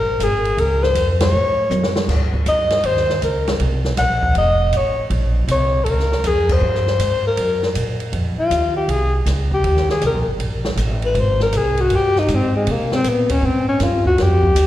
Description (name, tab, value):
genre	jazz, small-group swing and bop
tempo	159 BPM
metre	4/4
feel	swing 66% on 8ths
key	F minor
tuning	A4 = 435 Hz
part	breathy alto saxophone	melody	0.0-14.7 s	Ab3 to Gb5	-18 LUFS	left 2 dB	slapback echo
part	upright bass	bass	0.0-14.7 s	F1 to C3	-19 LUFS	right 1 dB	none
part	open jazz drum kit	drums	0.2-14.7 s	crash cymbal, hi-hat, kick drum, ride cymbal, snare drum, toms	-24 LUFS	right 1 dB	none
room	moderate club reverb, RT60 0.5 s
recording	live gig heard through the venue's PA, recital hall reverb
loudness	-15 LUFS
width	side -13 dB against mid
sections	0.0-8.1 A section; 8.1-14.7 B section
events	band accent 1.1, 6.4; drum fill 1.7-2.1; alto saxophone solo 8.1-14.7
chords	0.0 N.C.; 0.6 Db6; 1.3 A; 2.1 Abmaj9; 3.6 Bbsus2; 4.3 Faug7; 5.1 Bbmadd9; 6.6 Gsus4; 7.4 Gb; 8.1 F5; 9.6 Eb5; 11.2 Abmaj7; 12.7 C5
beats	0.20 | 0.58 0.95 1.33 1.71 | 2.08 2.46 2.84 3.22 | 3.59 3.97 4.35 4.73 | 5.11 5.48 5.86 6.24 | 6.62 6.99 7.37 7.75 | 8.13 8.51 8.88 9.26 | 9.64 10.02 10.40 10.78 | 11.16 11.54 11.91 12.29 | 12.67 13.05 13.43 13.80 | 14.18 14.56